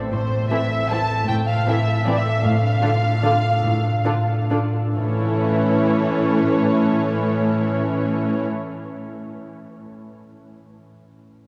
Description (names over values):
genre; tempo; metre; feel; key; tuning
classical; 126-166 BPM; 3/4; rubato; unclear; A4 = 440 Hz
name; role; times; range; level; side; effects
concert harp; arpeggios; 0.0-9.3 s; A2 to E5; -26 LUFS; equal; none
muted studio violin section; melody; 0.1-8.4 s; C5 to A5; -27 LUFS; equal; none
muted studio cello section; bass; 0.1-8.4 s; A2; -28 LUFS; equal; none
muted studio violin section; second line; 0.5-8.4 s; E4 to A4; -31 LUFS; equal; none
muted studio viola section; accompaniment; 0.5-8.4 s; D3 to D4; -28 LUFS; equal; none
room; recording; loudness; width
wet cathedral reverb, RT60 5.9 s; recorded in a church or concert hall; -20 LUFS; mono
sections
0.1-5.0 A section; 5.0-7.7 B section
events
slowing down 1.9-5.0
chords
0.1 Am; 2.4 Dm/A; 5.0 A